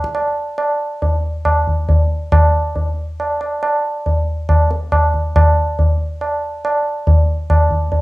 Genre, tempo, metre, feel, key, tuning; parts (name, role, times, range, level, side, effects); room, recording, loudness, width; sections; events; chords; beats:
indian classical; 139 BPM; 7/4; straight
tabla; percussion; 0.0-8.0 s; -14 LUFS; equal
light reverb; home recording on cassette; -14 LUFS; side -20 dB against mid
0.0-8.0 A section
0.14 0.58 1.02 1.46 1.89 | 2.33 2.76 3.20 3.63 4.06 4.50 4.93 | 5.36 5.79 6.22 6.65 7.07 7.50 7.93